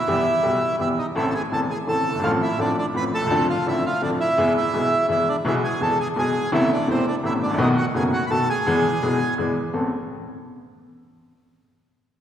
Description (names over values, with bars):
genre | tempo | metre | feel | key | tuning
tango | 168 BPM | 3/4 | rubato | A harmonic minor | A4 = 442 Hz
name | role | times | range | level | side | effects
bandoneon | melody | 0.0-9.3 s | C4 to B5 | -23 LUFS | right 1 dB | none
bright upright piano | accompaniment | 0.1-9.9 s | E1 to A4 | -22 LUFS | left 1 dB | none
room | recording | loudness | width
wet concert hall reverb, RT60 2.1 s | heard from further back in the room | -19 LUFS | side -10 dB against mid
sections
0.0-1.1 A section; 1.1-9.7 B section; 9.7-10.8 C section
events
none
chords
0.1 Em; 1.1 Am; 2.2 F/A; 3.3 Dm7; 4.4 E; 6.5 Amadd9; 7.6 B7; 8.7 E; 9.7 Amadd9